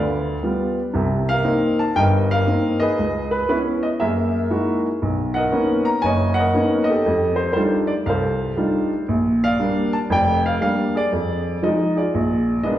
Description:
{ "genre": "solo jazz", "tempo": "118 BPM", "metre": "4/4", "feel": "swing 66% on 8ths", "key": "unclear", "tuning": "A4 = 440 Hz", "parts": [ { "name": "warm baby grand piano", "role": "solo", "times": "0.0-12.8 s", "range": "F1 to A#5", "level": "-18 LUFS", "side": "equal", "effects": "none" } ], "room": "wet recital hall reverb, RT60 1.4 s", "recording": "recorded in a church or concert hall", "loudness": "-18 LUFS", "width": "side -12 dB against mid", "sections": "0.0-12.8 A section", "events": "none", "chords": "0.0 G7; 0.9 Cm7; 3.0 Dbm7; 4.0 Gb13; 5.0 Bmaj9; 7.0 F13; 9.1 Bb6; 11.1 Fm7; 12.1 Bb7b9" }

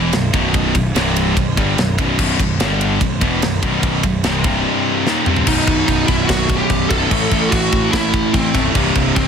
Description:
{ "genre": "heavy metal", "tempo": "146 BPM", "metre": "4/4", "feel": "straight", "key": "unclear", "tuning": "A4 = 441 Hz", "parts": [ { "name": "crunchy overdriven guitar", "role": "riff", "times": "0.0-9.3 s", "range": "B1 to A3", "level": "-23 LUFS", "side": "equal", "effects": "none" }, { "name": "distorted electric guitar", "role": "riff", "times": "0.0-9.3 s", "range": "B1 to A3", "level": "-22 LUFS", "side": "left 11 dB", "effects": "overdrive" }, { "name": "scooped high-gain guitar", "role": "riff", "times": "0.0-9.3 s", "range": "B1 to A3", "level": "-22 LUFS", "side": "right 10 dB", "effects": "distortion" }, { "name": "fuzz picked electric bass", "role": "bass", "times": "0.0-9.3 s", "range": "B0 to A1", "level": "-21 LUFS", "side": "equal", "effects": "overdrive" }, { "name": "tight metal drum kit", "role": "drums", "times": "0.1-9.3 s", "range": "crash cymbal, kick drum, ride cymbal, snare drum, toms", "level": "-19 LUFS", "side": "equal", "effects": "soft clipping on kick, soft clipping on snare" }, { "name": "high-gain lead guitar", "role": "melody", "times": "5.5-9.3 s", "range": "C4 to A4", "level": "-19 LUFS", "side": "equal", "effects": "distortion, digital delay" } ], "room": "small room ambience", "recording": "dense, heavily limited modern master", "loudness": "-14 LUFS", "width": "side -7 dB against mid", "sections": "0.0-5.5 A section; 5.5-9.3 B section", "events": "drum fill 5.1-5.5; half time 5.5-9.3", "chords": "0.0 B5; 1.0 C5; 1.4 B5; 2.6 G5; 3.0 B5; 4.4 C5; 5.1 Cm7; 5.5 B; 7.1 A5; 8.8 C5" }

